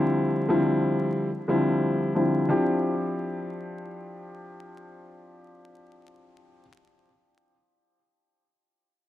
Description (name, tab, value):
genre	hip hop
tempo	90 BPM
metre	4/4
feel	swing 59% on 16ths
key	D minor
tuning	A4 = 444 Hz
part	dark grand piano	solo	0.0-6.6 s	D3 to G4	-24 LUFS	left 1 dB	high-pass filter, low-pass filter, tape echo
room	moderate small room reverb, RT60 0.5 s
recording	dark, warm production, vinyl crackle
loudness	-22 LUFS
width	side -13 dB against mid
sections	0.0-2.5 A section; 2.5-5.2 B section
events	none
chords	0.0 Dm11